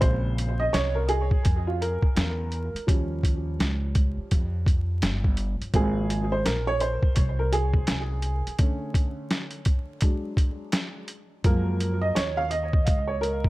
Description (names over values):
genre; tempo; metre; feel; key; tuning
hip hop, jazz-hop; 84 BPM; 4/4; swing 62% on 16ths; Bb minor; A4 = 440 Hz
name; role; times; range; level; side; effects
dark upright piano; accompaniment; 0.0-13.5 s; Db3 to F5; -29 LUFS; right 1 dB; tape echo
upright bass; bass; 0.0-13.5 s; G1 to Gb2; -27 LUFS; equal; none
boom bap sampler-style drum kit; drums; 0.0-13.5 s; hi-hat, kick drum, snare drum; -24 LUFS; equal; none
room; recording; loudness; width
small room ambience; echo-heavy mix, vinyl crackle; -23 LUFS; side -18 dB against mid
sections
0.0-13.5 A section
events
upright piano solo 0.0-13.5; break 8.6-11.4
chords
0.0 Bbm9; 2.9 Eb9; 5.7 Ab69; 8.6 Aadd11/D; 10.0 Gbsus2; 11.4 Gbmaj9